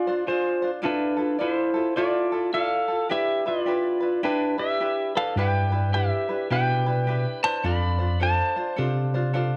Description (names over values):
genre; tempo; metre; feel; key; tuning
Hawaiian; 106 BPM; 4/4; swing 63% on 8ths; unclear; A4 = 444 Hz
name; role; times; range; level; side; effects
pedal steel guitar; melody; 0.0-8.8 s; D4 to B5; -26 LUFS; equal; none
tenor ukulele; accompaniment; 0.0-9.6 s; D4 to D5; -32 LUFS; equal; none
tine electric piano; bass; 5.4-9.5 s; F2 to C3; -26 LUFS; equal; none
room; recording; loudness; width
light reverb, studio reverb; none; -24 LUFS; mono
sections
0.0-9.6 A section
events
none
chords
0.0 Fm6; 0.8 Dmadd9; 3.1 G6; 5.4 Em7/G; 7.6 F6